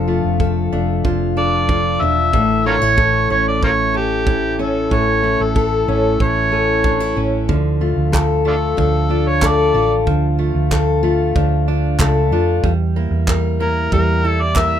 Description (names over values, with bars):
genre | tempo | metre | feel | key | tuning
acoustic pop | 93 BPM | 4/4 | straight | D harmonic minor | A4 = 439 Hz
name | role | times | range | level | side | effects
picked steel-string acoustic guitar | accompaniment | 0.0-14.8 s | A2 to Bb4 | -19 LUFS | left 5 dB | none
direct-recorded clean electric guitar | arpeggios | 0.0-14.8 s | E3 to E4 | -26 LUFS | right 6 dB | none
hollow-body short-scale fingered electric bass | bass | 0.0-14.8 s | E1 to F2 | -19 LUFS | right 2 dB | none
natural country drum kit | drums | 0.4-14.7 s | handclaps, kick drum | -20 LUFS | right 1 dB | none
overdriven harmonica | melody | 1.4-14.8 s | D4 to E5 | -18 LUFS | right 1 dB | none
room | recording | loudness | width
little or no reverb | minimal, uncompressed stereo recording | -14 LUFS | side -9 dB against mid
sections
0.0-7.5 A section; 7.5-14.8 B section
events
none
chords
0.0 Dm/F; 2.3 A; 7.5 Dm; 12.6 Edim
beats
0.40 1.05 1.69 | 2.34 2.98 3.63 4.27 | 4.92 5.56 6.21 6.85 | 7.49 8.14 8.78 9.43 | 10.07 10.71 11.36 12.00 | 12.64 13.28 13.93 14.57